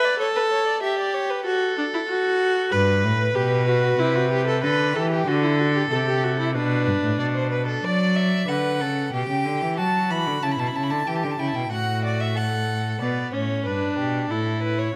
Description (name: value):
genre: classical, baroque-style fugue for string quartet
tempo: 93 BPM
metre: 4/4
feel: straight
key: G major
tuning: A4 = 440 Hz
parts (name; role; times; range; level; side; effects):
- rich violin; second line; 0.0-15.0 s; E4 to E5; -30 LUFS; equal; none
- clear viola; accompaniment; 0.0-7.8, 13.0-14.9 s; B3 to B4; -26 LUFS; equal; none
- clear cello; bass; 2.7-14.9 s; G2 to F#3; -26 LUFS; equal; none
- clear violin; melody; 7.8-13.0 s; D5 to B5; -29 LUFS; equal; none
room: moderate scoring stage reverb, RT60 1.6 s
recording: none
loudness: -23 LUFS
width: mono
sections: 0.0-13.0 A section; 13.0-15.0 B section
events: none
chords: 0.2 A7; 1.5 D (rootless); 2.7 G; 4.0 Am/C; 5.3 D7; 6.5 G; 7.8 D/F#; 9.1 Em/B; 10.4 A7; 11.7 D/A (rootless); 13.0 G; 14.3 F#m/A (rootless)